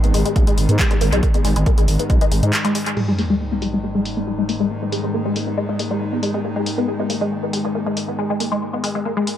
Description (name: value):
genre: driving peak-time techno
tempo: 138 BPM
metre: 4/4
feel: straight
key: G# minor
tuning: A4 = 440 Hz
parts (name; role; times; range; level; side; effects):
- resonant blip pluck; riff; 0.0-9.2 s; G#3 to G#4; -21 LUFS; left 1 dB; phaser, tube saturation, analog chorus, cassette tape, sidechain pumping, tape echo
- growling FM bass; bass; 0.0-2.5 s; G#1 to G#2; -18 LUFS; equal; sidechain pumping
- metallic inharmonic drone; drone; 0.0-9.4 s; G#2 to D#3; -26 LUFS; left 2 dB; chorus, built-in reverb, sidechain pumping
- punchy analog drum machine; drums; 0.0-9.4 s; crash cymbal, handclaps, hi-hat; -26 LUFS; equal; low-pass filter on hats, low-pass filter on snare, low-pass filter on cymbals, low-pass filter on room, analog delay
- electronic kick drum; drums; 0.4-2.2 s; none; -17 LUFS; equal; none
- sub drop; sound effects; 3.0-4.7 s; none; -27 LUFS; right 1 dB; none
room: moderate spring reverb, RT60 1.9 s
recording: echo-heavy mix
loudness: -17 LUFS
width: side -10 dB against mid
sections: 0.0-3.0 A section; 3.0-9.4 B section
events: break 2.5-3.0; impact 3.0-4.7; filter sweep on synth arpeggio sound 3.0-9.4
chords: 0.0 G#m